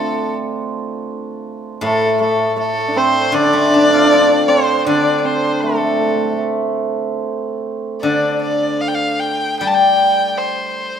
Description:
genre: chinese traditional, Chinese chamber ensemble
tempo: 74-83 BPM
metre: 4/4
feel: rubato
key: D yu mode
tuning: A4 = 441 Hz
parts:
  - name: rich erhu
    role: melody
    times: 0.0-11.0 s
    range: A4 to A5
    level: -18 LUFS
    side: left 1 dB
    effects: none
  - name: hammered dulcimer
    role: second line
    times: 0.0-10.8 s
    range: A3 to F4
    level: -18 LUFS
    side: right 2 dB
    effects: none
  - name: steel-string zither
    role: accompaniment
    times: 0.0-11.0 s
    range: A2 to A4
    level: -19 LUFS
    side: left 2 dB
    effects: none
room: moderate concert hall reverb, RT60 1.9 s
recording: minimal, uncompressed stereo recording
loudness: -14 LUFS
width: side -8 dB against mid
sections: 0.0-11.0 A section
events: none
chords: none

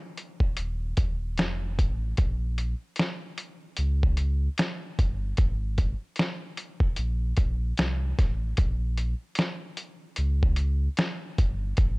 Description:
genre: lo-fi hip hop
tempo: 75 BPM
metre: 4/4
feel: swing 60% on 16ths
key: unclear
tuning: A4 = 440 Hz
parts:
  - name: lo-fi sampler-style drum kit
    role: drums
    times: 0.2-12.0 s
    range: hi-hat, kick drum, snare drum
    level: -25 LUFS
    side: equal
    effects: overdrive, vintage 12-bit sampler grit
  - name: sub bass with octave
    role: bass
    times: 0.6-12.0 s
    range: Eb1 to Db2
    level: -27 LUFS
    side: equal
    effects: none
room: little or no reverb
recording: none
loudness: -25 LUFS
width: side -26 dB against mid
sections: 0.0-8.6 A section; 8.6-12.0 A section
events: none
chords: none

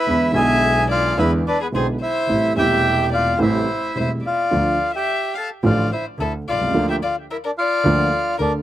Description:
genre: tango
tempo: 108 BPM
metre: 4/4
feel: rubato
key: A minor, D minor from 4.5 s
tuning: A4 = 439 Hz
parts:
  - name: bandoneon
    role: melody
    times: 0.0-8.5 s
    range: B3 to A5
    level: -21 LUFS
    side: right 1 dB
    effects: slapback echo
  - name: warm violin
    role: second line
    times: 0.0-8.5 s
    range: G#4 to F5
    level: -24 LUFS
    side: left 6 dB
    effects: slapback echo
  - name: dark concert grand piano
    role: accompaniment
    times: 0.1-8.6 s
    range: E1 to F4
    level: -21 LUFS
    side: right 2 dB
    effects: none
  - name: bright double bass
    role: bass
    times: 0.1-8.6 s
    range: E1 to E2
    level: -25 LUFS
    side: equal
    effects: none
room: little or no reverb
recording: recorded outdoors, with no room sound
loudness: -17 LUFS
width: side -13 dB against mid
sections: 0.0-4.5 A section; 4.5-8.6 B section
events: none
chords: 0.1 E7; 2.3 Am7; 4.5 Dm; 6.7 Bb/D

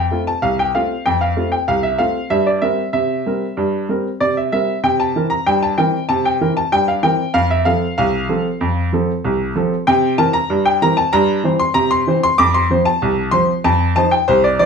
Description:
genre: ragtime piano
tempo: 95 BPM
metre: 2/4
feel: straight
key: F major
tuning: A4 = 440 Hz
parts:
  - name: clear upright piano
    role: solo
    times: 0.0-14.7 s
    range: C2 to D6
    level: -14 LUFS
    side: equal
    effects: none
room: wet studio reverb, RT60 0.6 s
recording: heard from further back in the room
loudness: -14 LUFS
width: side -6 dB against mid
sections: 0.0-14.7 A section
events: none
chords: 0.0 F; 2.3 C7/G; 4.8 C7; 7.4 F; 9.9 C7; 11.1 C/G; 12.4 F5

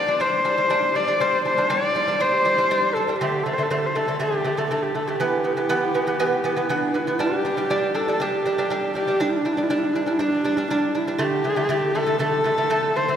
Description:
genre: mongolian traditional, Mongolian folk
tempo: 120 BPM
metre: 4/4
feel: straight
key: G zhi mode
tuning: A4 = 440 Hz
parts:
  - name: warm horsehead fiddle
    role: melody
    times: 0.0-13.2 s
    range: D4 to D5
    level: -21 LUFS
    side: left 1 dB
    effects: none
  - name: lute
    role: arpeggios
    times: 0.0-13.2 s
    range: D3 to D4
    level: -24 LUFS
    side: right 2 dB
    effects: none
room: wet cathedral reverb, RT60 4.9 s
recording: recorded in a church or concert hall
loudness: -19 LUFS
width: side -9 dB against mid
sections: 0.0-7.2 A section; 7.2-13.2 B section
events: none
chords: 0.0 G5; 3.2 D5; 5.2 E5; 7.2 G5; 11.2 D5

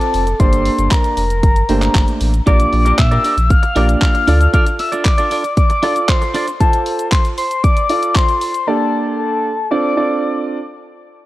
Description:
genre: dance-pop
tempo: 116 BPM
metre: 4/4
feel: straight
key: D minor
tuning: A4 = 440 Hz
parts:
  - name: soft octave-layered synth lead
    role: melody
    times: 0.0-10.4 s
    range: A5 to F6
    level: -18 LUFS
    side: left 2 dB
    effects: chorus, phaser, tape echo
  - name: warm baby grand piano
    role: accompaniment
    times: 0.0-10.6 s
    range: A3 to D5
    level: -20 LUFS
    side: right 3 dB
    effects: sidechain pumping
  - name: pop drum kit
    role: drums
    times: 0.0-8.7 s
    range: handclaps, hi-hat, kick drum, shaker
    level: -15 LUFS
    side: equal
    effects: none
  - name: warm sub bass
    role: bass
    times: 0.1-4.5 s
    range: F1 to Bb2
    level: -15 LUFS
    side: equal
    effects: sidechain pumping
  - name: clean electric guitar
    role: riff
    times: 2.5-6.5 s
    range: D4 to D5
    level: -22 LUFS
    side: right 3 dB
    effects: lush chorus
room: little or no reverb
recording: worn, warbling old tape, cassette tape, warbly pitch drift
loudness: -12 LUFS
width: side -16 dB against mid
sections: 0.0-10.7 A section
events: none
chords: 0.4 Gmadd9; 2.5 Bb6; 4.3 Dm; 6.6 F; 8.7 Gmadd9; 9.7 Dm7

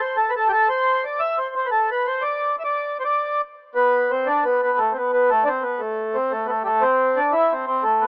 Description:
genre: celtic folk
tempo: 117 BPM (dotted quarters)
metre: 9/8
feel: straight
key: unclear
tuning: A4 = 440 Hz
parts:
  - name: mellow accordion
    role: solo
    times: 0.0-8.1 s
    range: G3 to E5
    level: -21 LUFS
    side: equal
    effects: none
room: light reverb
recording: worn, warbling old tape, cassette tape, warbly pitch drift, AM radio sound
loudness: -21 LUFS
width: mono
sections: 0.0-3.8 A section; 3.8-8.1 A section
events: none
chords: none

